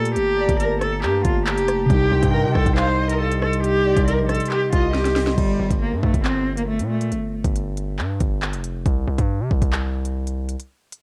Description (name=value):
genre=hip hop, drill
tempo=138 BPM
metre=4/4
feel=half-time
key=unclear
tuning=A4 = 442 Hz
part: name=rich cello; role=melody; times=0.0-7.1 s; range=G3 to C5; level=-24 LUFS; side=equal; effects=cassette tape
part: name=mellow tine electric piano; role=accompaniment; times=0.0-5.4 s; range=C3 to G4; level=-26 LUFS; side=equal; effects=phaser, cassette tape
part: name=glass harmonica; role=sustained chords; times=0.0-5.3 s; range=G4 to C6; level=-34 LUFS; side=equal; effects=cassette tape
part: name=distorted 808-style bass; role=bass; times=0.0-10.6 s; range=F1 to C3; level=-27 LUFS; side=equal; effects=distortion
part: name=drill drum kit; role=drums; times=0.1-11.0 s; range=crash cymbal, handclaps, hi-hat, kick drum, rim click, snare drum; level=-26 LUFS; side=equal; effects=cassette tape
part: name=warm studio violin section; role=second line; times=0.4-4.9 s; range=D5 to G5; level=-34 LUFS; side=equal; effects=cassette tape, analog delay
room=little or no reverb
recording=home recording on cassette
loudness=-21 LUFS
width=mono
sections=0.0-5.4 A section; 5.4-11.0 B section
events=drum fill 4.9-5.4; break 7.1-11.0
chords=0.0 Gmadd9; 1.9 Cm; 5.4 N.C.; 8.9 C5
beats=| 0.16 0.60 1.03 1.47 | 1.90 2.33 2.77 3.21 | 3.64 4.07 4.51 4.94 | 5.38 5.81 6.25 6.68 | 7.12 7.55 7.99 8.42 | 8.86 9.29 9.73 10.16 | 10.60